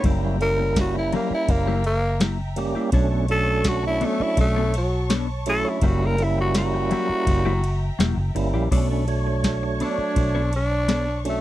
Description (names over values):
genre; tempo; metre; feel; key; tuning
straight-eighth soul blues; 83 BPM; 4/4; straight; B minor; A4 = 439 Hz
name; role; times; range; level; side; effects
growling tenor saxophone; melody; 0.0-11.4 s; F#3 to A#4; -24 LUFS; equal; none
tonewheel organ; accompaniment; 0.0-11.4 s; F#3 to C#5; -26 LUFS; right 4 dB; slow rotary speaker, overdrive
dark studio string section; sustained chords; 0.0-11.4 s; C#5 to C#6; -36 LUFS; equal; none
clean electric guitar; stabs; 0.0-11.3 s; F#3 to C#5; -28 LUFS; left 5 dB; phaser
vintage muted fingered electric bass; bass; 0.0-11.4 s; E1 to B1; -24 LUFS; equal; none
soft vintage rhythm box; drums; 0.0-11.4 s; crash cymbal, kick drum, ride cymbal, snare drum; -23 LUFS; equal; none
room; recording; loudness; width
little or no reverb; dry, close 1970s-style studio recording; -20 LUFS; side -14 dB against mid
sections
0.0-8.7 A section; 8.7-11.4 A section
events
tenor saxophone solo 0.0-8.7, 8.7-11.4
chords
0.0 F#7b9; 2.9 Bm9; 5.8 F#7b9; 8.7 Bm9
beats
| 0.04 0.76 1.48 2.21 | 2.93 3.65 4.37 5.10 | 5.82 6.54 7.26 7.99 | 8.71 9.43 10.15 10.88